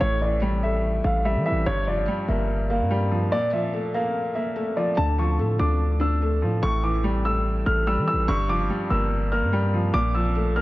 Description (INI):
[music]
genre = hip hop, drill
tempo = 145 BPM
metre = 4/4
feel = half-time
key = D harmonic minor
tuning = A4 = 440 Hz
[part]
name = dark baby grand piano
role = melody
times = 0.0-10.6 s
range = C#5 to F6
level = -27 LUFS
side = equal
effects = low-pass filter, digital delay
[part]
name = felt-muted upright piano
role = accompaniment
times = 0.0-10.6 s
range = G2 to D4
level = -26 LUFS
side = equal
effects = low-pass filter
[part]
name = hard-hitting 808-style bass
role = bass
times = 0.0-10.6 s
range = F1 to E3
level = -24 LUFS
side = equal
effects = none
[sound]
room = light reverb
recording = lossy compression artefacts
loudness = -21 LUFS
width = side -17 dB against mid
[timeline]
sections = 0.0-5.0 A section; 5.0-10.6 B section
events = none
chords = 0.0 A5; 1.7 Gm7; 3.3 Bb5; 5.0 Dm; 6.6 A5; 8.3 Gm7; 9.9 Bb5